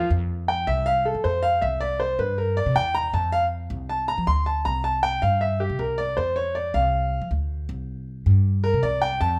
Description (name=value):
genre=latin, Cuban son and guajira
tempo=158 BPM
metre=4/4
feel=straight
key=F major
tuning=A4 = 435 Hz
part: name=clear concert grand piano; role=arpeggios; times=0.0-9.4 s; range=G4 to C6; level=-25 LUFS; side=equal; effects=none
part: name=upright bass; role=bass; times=0.0-9.4 s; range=C2 to F3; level=-27 LUFS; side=equal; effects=none
room=light reverb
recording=none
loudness=-24 LUFS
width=mono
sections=0.1-9.4 A section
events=grand piano solo 0.1-9.4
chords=0.1 F5; 1.6 C; 3.1 F5; 4.7 C5; 6.2 F5; 7.7 C5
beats=| 0.10 0.48 0.86 1.24 | 1.62 2.00 2.38 2.76 | 3.14 3.52 3.90 4.28 | 4.66 5.04 5.42 5.80 | 6.17 6.55 6.93 7.31 | 7.69 8.07 8.45 8.83 | 9.21